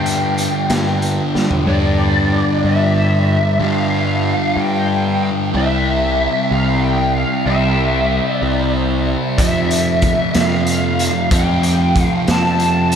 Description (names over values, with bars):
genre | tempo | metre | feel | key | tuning
psychedelic rock | 62 BPM (dotted quarters) | 6/8 | straight | unclear | A4 = 440 Hz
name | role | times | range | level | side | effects
lead guitar through a small cranked amp | melody | 0.0-13.0 s | D5 to A5 | -19 LUFS | equal | wah, overdrive, ensemble chorus, tape echo
fuzz guitar | riff | 0.0-13.0 s | F2 to C4 | -18 LUFS | equal | distortion, phaser
fuzz picked electric bass | bass | 0.0-13.0 s | C2 to G3 | -19 LUFS | equal | overdrive
raw garage drum kit | drums | 0.1-1.7, 9.4-13.0 s | hi-hat, kick drum, snare drum, toms | -20 LUFS | equal | none
room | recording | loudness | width
moderate huge ambient reverb, RT60 9.1 s | dreamy mix soaked in reverb | -14 LUFS | side -8 dB against mid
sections
0.0-1.7 A section; 1.7-13.0 B section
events
drum fill 1.3-1.7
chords
0.0 G5; 5.5 C; 9.4 F5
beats
0.70 | 1.67 2.64 | 3.60 4.57 | 5.53 6.50 | 7.46 8.42 | 9.39 10.35 | 11.31 12.28